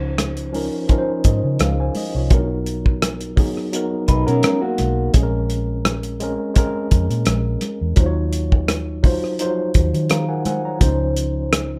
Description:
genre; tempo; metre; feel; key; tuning
lush 1970s-style soul; 85 BPM; 4/4; swing 54% on 16ths; Db major; A4 = 440 Hz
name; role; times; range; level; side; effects
tine electric piano; accompaniment; 0.0-11.8 s; F3 to Bb5; -26 LUFS; equal; overdrive
vintage muted fingered electric bass; bass; 0.0-11.8 s; Bb1 to Eb3; -24 LUFS; equal; none
cloth-damped thuddy drum kit; drums; 0.2-11.7 s; hi-hat, kick drum, rim click; -20 LUFS; equal; none
congas; percussion; 0.2-11.7 s; none; -32 LUFS; equal; none
electric guitar through a small old amp; riff; 4.1-5.1 s; Bb3 to Cb5; -22 LUFS; equal; none
room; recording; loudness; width
light reverb; rough home demo mix; -19 LUFS; mono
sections
0.0-11.8 A section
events
tine electric piano fill 9.7-10.8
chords
0.0 Dbmaj9; 2.3 Cbmaj7; 5.1 Bbm9; 8.0 Ebm9; 10.8 Dbmaj9

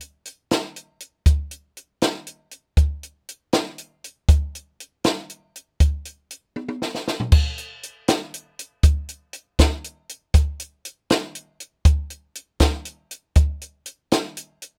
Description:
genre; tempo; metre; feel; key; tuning
rock; 79 BPM (dotted quarters); 6/8; straight; none; none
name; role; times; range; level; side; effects
compact cocktail drum kit; drums; 0.0-14.7 s; crash cymbal, hi-hat, kick drum, snare drum, toms; -21 LUFS; equal; none
room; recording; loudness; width
little or no reverb; rough home demo mix; -22 LUFS; mono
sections
0.0-7.3 A section; 7.3-14.8 B section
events
drum fill 6.6-7.3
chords
none

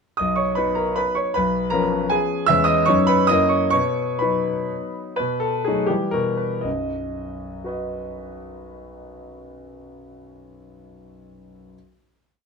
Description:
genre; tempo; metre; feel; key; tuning
classical, romantic triple-time dance for piano with dotted rhythms; 110-170 BPM; 3/4; rubato; B major; A4 = 440 Hz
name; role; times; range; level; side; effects
clear concert grand piano; solo; 0.2-11.8 s; B1 to E6; -20 LUFS; equal; none
room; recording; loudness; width
light reverb; dark, warm production; -19 LUFS; side -5 dB against mid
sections
0.2-5.2 A section; 5.2-6.7 coda; 6.7-9.6 final chord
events
slowing down 3.1-6.7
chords
0.2 B; 1.4 C#7/B; 2.5 C#m7/E; 2.9 B/F#; 3.3 F#7; 3.7 B; 5.2 B7; 5.9 Em; 6.7 B

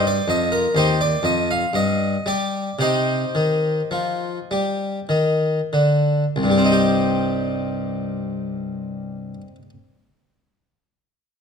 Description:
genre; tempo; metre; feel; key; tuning
classical, baroque-style suite movement for harpsichord; 46-65 BPM; 3/4; rubato; C minor; A4 = 441 Hz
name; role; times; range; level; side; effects
harpsichord; solo; 0.0-9.7 s; C2 to F5; -18 LUFS; left 1 dB; none
room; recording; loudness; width
moderate recital hall reverb, RT60 1.5 s; dark, warm production; -18 LUFS; side -6 dB against mid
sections
0.0-6.3 A section; 6.3-10.2 B section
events
slowing down 0.0-6.3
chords
0.0 Ebmaj13; 1.7 N.C.; 2.8 Cm

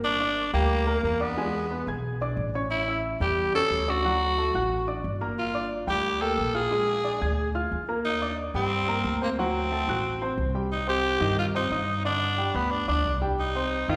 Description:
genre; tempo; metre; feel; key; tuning
latin, salsa; 180 BPM; 4/4; straight; unclear; A4 = 440 Hz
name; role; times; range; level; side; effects
raspy tenor saxophone; melody; 0.0-14.0 s; Bb3 to A4; -29 LUFS; equal; none
upright bass; bass; 0.0-14.0 s; G1 to G2; -33 LUFS; equal; none
clear grand piano; accompaniment; 0.2-14.0 s; D3 to G#6; -32 LUFS; equal; none
room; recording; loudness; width
wet recital hall reverb, RT60 1.5 s; recorded in a church or concert hall; -27 LUFS; mono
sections
0.0-10.7 A section; 10.7-14.0 B section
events
none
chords
0.0 Gm; 1.4 E7; 2.7 A7; 4.0 D; 5.4 Gm7; 6.7 Bb7; 8.0 Ebmaj7; 9.4 D7; 10.7 Cm; 12.0 G; 13.4 Cm

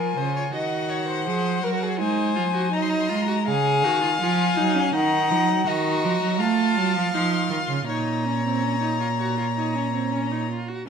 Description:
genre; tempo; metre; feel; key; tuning
classical, baroque-style fugue for string quartet; 81 BPM; 4/4; straight; Bb minor from 4.9 s; A4 = 445 Hz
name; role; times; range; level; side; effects
rich violin; melody; 0.0-10.5 s; F#5 to B#5; -26 LUFS; left 9 dB; none
rich violin; second line; 0.0-10.5 s; G#4 to Gb5; -28 LUFS; left 2 dB; none
rich viola; accompaniment; 0.0-10.9 s; C4 to G#4; -28 LUFS; right 2 dB; none
rich cello; bass; 0.0-10.5 s; Bb2 to A3; -25 LUFS; right 5 dB; none
room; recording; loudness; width
moderate recital hall reverb, RT60 1.3 s; none; -21 LUFS; side -6 dB against mid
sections
0.0-10.9 A section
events
none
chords
0.0 A#m; 0.5 D#m; 2.0 G#7; 3.5 C#; 4.9 Ebm; 6.4 F7; 7.9 Bbm

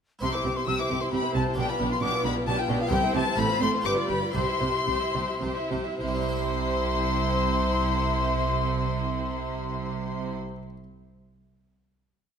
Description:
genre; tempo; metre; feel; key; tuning
classical, baroque-style concerto movement with solo episodes; 101-134 BPM; 3/4; straight; C major; A4 = 435 Hz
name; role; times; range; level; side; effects
silver concert flute; melody; 0.2-10.3 s; F5 to E6; -31 LUFS; left 5 dB; none
warm chamber violin section; melody; 0.2-10.3 s; F5 to E6; -33 LUFS; left 6 dB; none
warm studio violin section; second line; 0.2-10.3 s; G4 to E5; -34 LUFS; left 2 dB; none
clear chamber viola section; accompaniment; 0.2-10.3 s; C4 to G4; -32 LUFS; right 2 dB; none
harpsichord; accompaniment; 0.2-10.8 s; G2 to E5; -35 LUFS; equal; none
rich chamber cello section; bass; 0.2-10.3 s; G2 to C3; -32 LUFS; right 4 dB; none
rich chamber double bass section; bass; 0.2-10.3 s; G1 to C2; -31 LUFS; right 3 dB; none
room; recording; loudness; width
wet recital hall reverb, RT60 1.5 s; none; -24 LUFS; side -7 dB against mid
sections
0.2-6.0 ritornello; 6.0-9.6 final chord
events
slowing down 2.2-6.0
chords
0.2 C; 1.6 G7/B; 2.9 C; 3.4 F/A; 3.9 G7; 4.4 C

